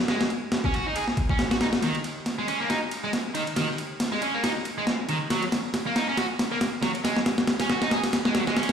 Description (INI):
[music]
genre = breakbeat, breaks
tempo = 138 BPM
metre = 4/4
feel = swing 56% on 16ths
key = Eb minor pentatonic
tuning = A4 = 439 Hz
[part]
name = distorted electric guitar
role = riff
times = 0.1-8.7 s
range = Eb3 to Ab4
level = -28 LUFS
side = right 1 dB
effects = overdrive, tube saturation, dub echo
[part]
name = breakbeat sampler-style drum kit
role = drums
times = 0.1-8.7 s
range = kick drum, ride cymbal, snare drum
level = -25 LUFS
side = equal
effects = overdrive
[part]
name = hollow-body short-scale picked electric bass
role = bass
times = 0.3-8.7 s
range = Gb1 to Ab2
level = -44 LUFS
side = left 1 dB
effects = none
[sound]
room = moderate plate reverb, RT60 1.1 s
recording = played on a big sound system in a bare room, large studio reverb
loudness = -23 LUFS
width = side -7 dB against mid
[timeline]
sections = 0.0-8.7 A section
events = build-up 0.0-8.7; drum fill 1.8-8.7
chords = 0.1 Ab5; 1.8 Eb5; 5.3 Gb; 7.0 Ab5